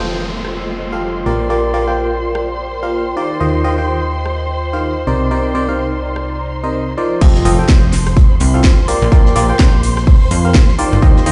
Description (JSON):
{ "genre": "piano house", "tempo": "126 BPM", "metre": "4/4", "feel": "swing 58% on 16ths", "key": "F mixolydian", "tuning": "A4 = 439 Hz", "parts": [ { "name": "dark studio violin section", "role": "sustained chords", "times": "0.0-11.3 s", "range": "C5 to C6", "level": "-27 LUFS", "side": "equal", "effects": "sidechain pumping, low-pass filter" }, { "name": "barking FM electric piano", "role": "riff", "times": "0.0-11.3 s", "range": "C3 to G5", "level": "-21 LUFS", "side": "equal", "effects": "chorus, sidechain pumping, dub echo" }, { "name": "plucky analog bass", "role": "bass", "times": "0.0-11.3 s", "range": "F1 to F2", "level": "-20 LUFS", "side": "equal", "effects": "sidechain pumping" }, { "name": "downlifter and impact", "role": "sound effects", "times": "0.0-3.4, 7.2-9.1 s", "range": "none", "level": "-28 LUFS", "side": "equal", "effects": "none" }, { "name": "airy breathy pad", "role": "texture", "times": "0.0-7.2 s", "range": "Eb4 to Bb5", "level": "-27 LUFS", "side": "equal", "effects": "chorus, sidechain pumping" }, { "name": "loose indie drum kit", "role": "drums", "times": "0.1-11.3 s", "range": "hi-hat, snare drum", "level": "-39 LUFS", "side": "equal", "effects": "none" }, { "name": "house drum kit", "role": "drums", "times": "0.4-11.3 s", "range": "crash cymbal, hi-hat, rim click, snare drum", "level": "-23 LUFS", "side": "equal", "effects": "none" }, { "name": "electronic kick drum", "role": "drums", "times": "7.2-11.1 s", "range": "none", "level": "-12 LUFS", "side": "equal", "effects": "none" } ], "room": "light reverb, small room ambience", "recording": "played on a big sound system in a bare room, stone room reverb, nothing above 10.5 kHz", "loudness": "-14 LUFS", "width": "mono", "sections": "0.0-7.2 A section; 7.2-11.3 B section", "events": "drop 7.2-11.3; impact 7.2-9.1", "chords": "0.0 F9; 1.3 Bb6; 3.4 Eb69; 5.1 Cm9; 7.2 F9; 8.9 Bb6", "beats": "0.07 0.55 1.02 | 1.50 1.98 2.45 2.93 | 3.40 3.88 4.36 4.83 | 5.31 5.79 6.26 6.74 | 7.21 7.69 8.17 8.64 | 9.12 9.60 10.07 10.55 | 11.02" }